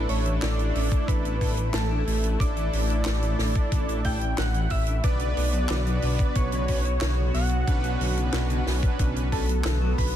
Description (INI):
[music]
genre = synthwave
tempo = 91 BPM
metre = 4/4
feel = straight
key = unclear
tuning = A4 = 440 Hz
[part]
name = wide unison lead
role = melody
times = 0.0-10.2 s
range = A4 to G5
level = -32 LUFS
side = equal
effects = tape echo, shimmer reverb
[part]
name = FM electric piano with soft pad layer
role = second line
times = 0.0-10.2 s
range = A5 to G6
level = -39 LUFS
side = right 3 dB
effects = chorus, tape echo, shimmer reverb
[part]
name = lush unison pad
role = sustained chords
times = 0.0-10.2 s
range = A3 to F#4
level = -35 LUFS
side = left 1 dB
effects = chorus, phaser, sidechain pumping, shimmer reverb
[part]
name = clean electric guitar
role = arpeggios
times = 0.0-10.1 s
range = B2 to D4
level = -36 LUFS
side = left 3 dB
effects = vintage 12-bit sampler grit, tape echo, shimmer reverb
[part]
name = analog synth brass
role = stabs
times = 0.0-9.5 s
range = B3 to B4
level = -35 LUFS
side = right 4 dB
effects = chorus, tape echo, shimmer reverb
[part]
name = dark detuned saw bass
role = bass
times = 0.0-10.2 s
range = A1 to B1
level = -25 LUFS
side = equal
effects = none
[part]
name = compact cocktail drum kit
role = drums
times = 0.1-10.1 s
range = handclaps, hi-hat, snare drum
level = -34 LUFS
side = right 1 dB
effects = studio ambience
[part]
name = electronic kick drum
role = drums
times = 0.9-10.1 s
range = none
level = -25 LUFS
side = equal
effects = studio ambience
[sound]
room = light reverb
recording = dense, heavily limited modern master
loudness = -22 LUFS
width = side -11 dB against mid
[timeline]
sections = 0.0-10.2 A section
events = none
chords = 0.0 Asus4; 5.0 Bmadd9